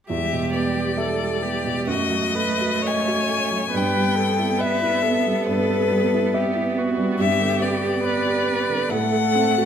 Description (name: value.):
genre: classical, slow romantic movement for piano quartet.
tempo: 60-71 BPM.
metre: 4/4.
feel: rubato.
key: E minor.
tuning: A4 = 442 Hz.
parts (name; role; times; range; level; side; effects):
clear violin; melody; 0.1-9.7 s; B4 to G#5; -24 LUFS; left 8 dB; none.
rich cello; second line; 0.1-9.7 s; G3 to B3; -27 LUFS; right 4 dB; none.
rich viola; accompaniment; 0.1-9.7 s; F#4 to C#5; -26 LUFS; right 3 dB; none.
warm baby grand piano; accompaniment; 0.1-9.7 s; E2 to E5; -24 LUFS; right 1 dB; none.
room: wet recital hall reverb, RT60 1.5 s.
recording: none.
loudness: -19 LUFS.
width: side -8 dB against mid.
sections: 0.1-9.7 A section.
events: none.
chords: 0.1 Em; 1.9 D#dim/F#; 3.7 Em/G; 7.2 G; 8.9 F#dim/A.